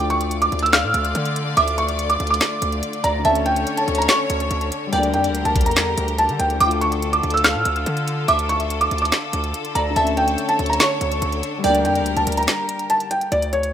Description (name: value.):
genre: hip hop, trap.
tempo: 143 BPM.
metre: 4/4.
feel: half-time.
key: D harmonic minor.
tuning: A4 = 440 Hz.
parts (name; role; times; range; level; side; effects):
felt-muted upright piano; melody; 0.0-13.7 s; C#5 to F6; -20 LUFS; right 1 dB; low-pass filter, ping-pong delay.
glassy wavetable pluck; second line; 0.0-12.0 s; C#5 to G5; -26 LUFS; right 2 dB; chorus, ping-pong delay.
dark concert grand piano; accompaniment; 0.0-13.3 s; D3 to F4; -29 LUFS; left 6 dB; low-pass filter.
bright symphonic string section; sustained chords; 0.0-13.3 s; D3 to D5; -26 LUFS; left 3 dB; none.
distorted 808-style bass; bass; 0.0-13.7 s; D2 to D3; -25 LUFS; equal; distortion.
trap drum kit; drums; 0.0-13.7 s; handclaps, hi-hat, kick drum, snare drum; -22 LUFS; equal; none.
room: light reverb, studio ambience.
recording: rough home demo mix.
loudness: -17 LUFS.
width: side -9 dB against mid.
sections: 0.0-13.3 A section.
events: break 12.5-13.3.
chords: 0.0 Dm; 3.2 A/D; 4.9 Gm/D; 6.6 Dm; 10.0 A/D; 11.6 Gm/D.